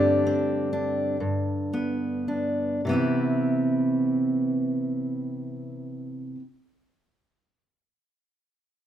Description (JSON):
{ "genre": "folk, solo fingerstyle acoustic guitar", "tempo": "33-45 BPM (dotted quarters)", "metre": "6/8", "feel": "straight", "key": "C major", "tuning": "A4 = 440 Hz", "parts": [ { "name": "fingerpicked steel-string acoustic guitar", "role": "solo", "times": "0.0-6.4 s", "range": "G2 to G4", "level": "-24 LUFS", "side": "equal", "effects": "none" } ], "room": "light reverb", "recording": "band playing live in one room", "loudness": "-23 LUFS", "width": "side -10 dB against mid", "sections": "0.0-2.9 A section; 2.9-6.5 B section", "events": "slowing down 0.0-2.9", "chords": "0.0 Gsus4; 1.2 G; 2.9 Cmaj7" }